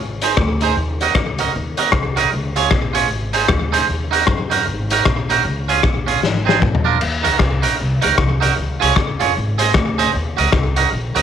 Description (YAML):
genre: ska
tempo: 154 BPM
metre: 4/4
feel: swing 61% on 8ths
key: Eb dorian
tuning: A4 = 445 Hz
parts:
  - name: upright bass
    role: bass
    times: 0.0-11.2 s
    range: Ab1 to Gb2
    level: -21 LUFS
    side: equal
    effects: none
  - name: twangy electric guitar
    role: accompaniment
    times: 0.2-11.2 s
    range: C4 to Eb5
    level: -18 LUFS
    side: right 10 dB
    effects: none
  - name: raw garage drum kit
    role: drums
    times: 0.2-11.2 s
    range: crash cymbal, hi-hat, kick drum, rim click, snare drum, toms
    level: -19 LUFS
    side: left 3 dB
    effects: slapback echo
room: light reverb, small room ambience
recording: 1960s-style stereo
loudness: -15 LUFS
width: side -9 dB against mid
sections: 0.0-7.0 A section; 7.0-11.2 B section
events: drum fill 6.2-7.0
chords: 0.0 Ab; 0.8 Ebm; 2.3 Db; 3.1 Ab; 3.9 Ebm; 5.5 Db; 6.2 Ab; 6.6 Bb; 7.0 Ebm; 8.6 Db; 9.4 Ab; 10.1 Ebm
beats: 0.38 | 0.77 1.16 1.55 1.94 | 2.33 2.72 3.11 3.50 | 3.89 4.28 4.67 5.06 | 5.45 5.84 6.23 6.62 | 7.01 7.40 7.79 8.19 | 8.58 8.97 9.36 9.75 | 10.14 10.53 10.92